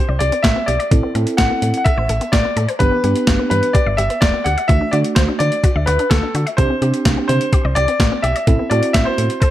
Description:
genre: synth-pop.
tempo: 127 BPM.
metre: 4/4.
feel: straight.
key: G major.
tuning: A4 = 442 Hz.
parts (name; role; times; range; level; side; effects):
clear concert grand piano; melody; 0.0-9.5 s; A4 to F#5; -19 LUFS; left 1 dB; slapback echo.
resonant blip pluck; arpeggios; 0.0-9.5 s; C3 to E5; -26 LUFS; left 4 dB; chorus, slapback echo.
solid FM bass; bass; 0.1-9.3 s; E1 to D3; -19 LUFS; equal; none.
clean 12-bit digital drum machine; drums; 0.2-9.5 s; hi-hat, kick drum, snare drum; -17 LUFS; equal; overdrive, gated reverb.
muted felt-like synth keys; accompaniment; 0.9-9.3 s; A3 to A4; -22 LUFS; right 3 dB; chorus.
room: light reverb.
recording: none.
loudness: -14 LUFS.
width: side -13 dB against mid.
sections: 0.0-9.5 A section.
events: none.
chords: 0.0 Csus2; 0.9 Amadd9; 2.8 G6; 4.7 Dadd9; 6.6 Csus2; 8.5 Amadd9.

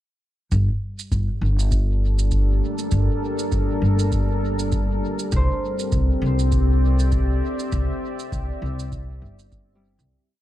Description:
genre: ambient dub.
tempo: 100 BPM.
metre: 4/4.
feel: swing 57% on 16ths.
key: G dorian.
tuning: A4 = 438 Hz.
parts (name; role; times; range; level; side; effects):
deep dark ambient pad; sustained chords; 1.4-10.1 s; G3 to E5; -27 LUFS; left 1 dB; chorus, built-in reverb.
upright bass; bass; 0.5-10.1 s; G1 to C2; -20 LUFS; equal; none.
electronic kick drum; drums; 0.5-9.7 s; none; -26 LUFS; equal; none.
shaker; drums; 0.5-10.1 s; none; -36 LUFS; right 8 dB; dub echo.
Celtic harp; arpeggios; 5.4-10.4 s; G3 to C5; -32 LUFS; right 4 dB; tape echo.
room: studio ambience.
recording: dark, warm production.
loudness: -19 LUFS.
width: side -14 dB against mid.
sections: 0.5-10.1 groove.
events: fade-out 6.9-10.1.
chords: 0.5 Gmadd9; 5.3 C13.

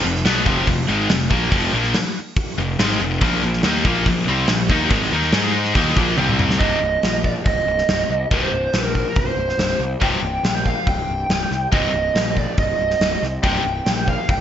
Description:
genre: hard rock.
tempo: 141 BPM.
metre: 4/4.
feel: straight.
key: C minor.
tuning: A4 = 440 Hz.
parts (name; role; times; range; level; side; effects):
high-gain distorted guitar; riff; 0.0-13.6 s; C2 to Ab4; -20 LUFS; left 1 dB; distortion.
fuzz picked electric bass; bass; 0.0-14.4 s; C1 to Ab2; -23 LUFS; equal; overdrive.
gated 80s drum kit; drums; 0.2-14.4 s; hi-hat, kick drum, snare drum, toms; -21 LUFS; equal; none.
lead guitar through a small cranked amp; melody; 6.6-14.4 s; Bb4 to G5; -21 LUFS; right 2 dB; overdrive, slapback echo.
room: moderate lush hall reverb, RT60 1.5 s.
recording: big arena sound, nothing above 7.7 kHz.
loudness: -16 LUFS.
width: side -10 dB against mid.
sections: 0.0-6.6 A section; 6.6-14.4 B section.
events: drum fill 6.2-6.6.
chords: 0.0 F5; 3.2 Bb5; 5.3 Ab5; 5.8 Bb5; 6.2 C5; 6.6 Cm.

